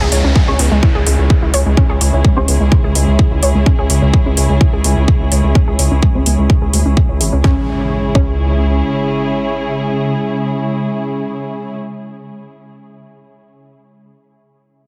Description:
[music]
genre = melodic techno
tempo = 127 BPM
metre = 4/4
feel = straight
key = C# minor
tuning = A4 = 437 Hz
[part]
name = dark studio string section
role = sustained chords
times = 0.0-11.8 s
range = C#3 to G#4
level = -23 LUFS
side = equal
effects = sidechain pumping, low-pass filter
[part]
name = analog pluck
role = arpeggios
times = 0.0-8.3 s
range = G#3 to E5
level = -24 LUFS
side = equal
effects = chorus, sidechain pumping, dub echo
[part]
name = round analog bass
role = bass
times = 0.0-8.8 s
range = G#1 to D2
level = -16 LUFS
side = equal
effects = tube saturation, sidechain pumping
[part]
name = swarming drone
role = drone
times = 2.6-11.8 s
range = C#3 to G#3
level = -26 LUFS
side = equal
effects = built-in reverb, sidechain pumping
[part]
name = downlifter and impact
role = sound effects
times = 0.0-3.7, 7.5-11.8 s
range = none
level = -27 LUFS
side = equal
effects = none
[part]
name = electronic hi-hat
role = drums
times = 0.1-7.3 s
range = none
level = -22 LUFS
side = equal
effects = sidechain pumping on hats, sidechain pumping on toms
[part]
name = electronic kick drum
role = drums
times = 0.4-8.3 s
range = none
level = -14 LUFS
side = equal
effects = none
[part]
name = filtered dub chord stab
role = stabs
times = 0.5-12.5 s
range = C#4 to C#5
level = -29 LUFS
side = equal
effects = none
[sound]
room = digital ambience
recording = heavily compressed radio sound, multiband compression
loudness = -14 LUFS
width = mono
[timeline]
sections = 0.0-7.4 A section; 7.4-11.2 B section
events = filter sweep on synth arpeggio sound 0.0-7.4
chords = 0.0 C#m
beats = 0.35 0.83 1.30 | 1.77 2.25 2.72 3.19 | 3.66 4.13 4.61 5.08 | 5.55 6.03 6.50 6.97 | 7.44 7.91 8.39 8.86 | 9.33 9.80 10.28 10.75

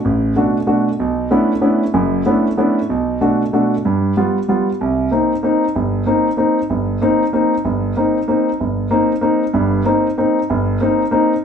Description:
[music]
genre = jazz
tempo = 189 BPM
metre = 3/4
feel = swing 61% on 8ths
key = B minor, C minor from 4.8 s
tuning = A4 = 440 Hz
[part]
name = warm concert grand piano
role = solo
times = 0.1-11.3 s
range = F#1 to F#4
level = -14 LUFS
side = equal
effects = none
[sound]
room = wet studio reverb, RT60 0.7 s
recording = band playing live in one room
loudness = -14 LUFS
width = side -7 dB against mid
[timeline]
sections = 0.0-4.8 A section; 4.8-11.4 B section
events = none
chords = 0.0 D; 1.0 Bm11; 2.9 D/B; 3.8 G7; 4.8 Cm7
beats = | 0.04 0.36 0.68 | 0.99 1.31 1.63 | 1.94 2.26 2.58 | 2.89 3.21 3.53 | 3.84 4.16 4.48 | 4.79 5.11 5.43 | 5.75 6.06 6.38 | 6.70 7.01 7.33 | 7.64 7.96 8.28 | 8.59 8.91 9.23 | 9.54 9.86 10.18 | 10.49 10.81 11.12

